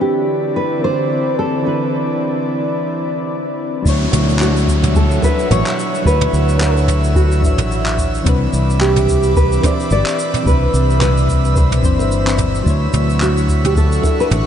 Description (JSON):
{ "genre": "sunset chillout", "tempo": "109 BPM", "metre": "4/4", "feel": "swing 56% on 16ths", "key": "D major", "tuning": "A4 = 439 Hz", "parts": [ { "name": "nylon-string guitar", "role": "melody", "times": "0.0-14.5 s", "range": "F#4 to D5", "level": "-20 LUFS", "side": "equal", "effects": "wide subtle chorus, ping-pong delay" }, { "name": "soft electric-piano-like synth keys", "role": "accompaniment", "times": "0.0-14.5 s", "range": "E3 to E5", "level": "-22 LUFS", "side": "moving between left 4 dB and right 4 dB", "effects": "chorus, auto-pan, diffuse ambient delay" }, { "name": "airy breathy pad", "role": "sustained chords", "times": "0.0-14.5 s", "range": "D3 to E6", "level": "-24 LUFS", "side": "equal", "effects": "chorus" }, { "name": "drifting glass-harmonics texture", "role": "texture", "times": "0.0-14.5 s", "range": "E5", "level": "-32 LUFS", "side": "right 4 dB", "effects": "chorus, built-in reverb" }, { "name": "fingered electric bass", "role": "bass", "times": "3.9-14.4 s", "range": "G1 to D2", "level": "-16 LUFS", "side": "equal", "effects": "tube saturation" }, { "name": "electronic kick drum", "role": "drums", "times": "3.9-14.2 s", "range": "none", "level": "-17 LUFS", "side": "equal", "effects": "none" }, { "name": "jazz brush drum kit", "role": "drums", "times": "3.9-14.4 s", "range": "handclaps, shaker, toms", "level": "-23 LUFS", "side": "right 2 dB", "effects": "none" }, { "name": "downlifter", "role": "sound effects", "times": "3.9-8.3 s", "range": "none", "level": "-26 LUFS", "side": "equal", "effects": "none" }, { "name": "bongos", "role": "percussion", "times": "5.2-14.2 s", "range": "none", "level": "barely audible", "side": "none", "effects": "none" } ], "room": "moderate huge ambient reverb, RT60 8.5 s", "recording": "dreamy mix soaked in reverb, nothing above 10.6 kHz", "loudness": "-13 LUFS", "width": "side -9 dB against mid", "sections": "0.0-3.9 A section; 3.9-14.5 B section", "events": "break 2.8-3.9", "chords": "0.0 Cmaj9; 3.9 Dmaj9; 8.3 Cmaj9; 12.7 Dmaj9" }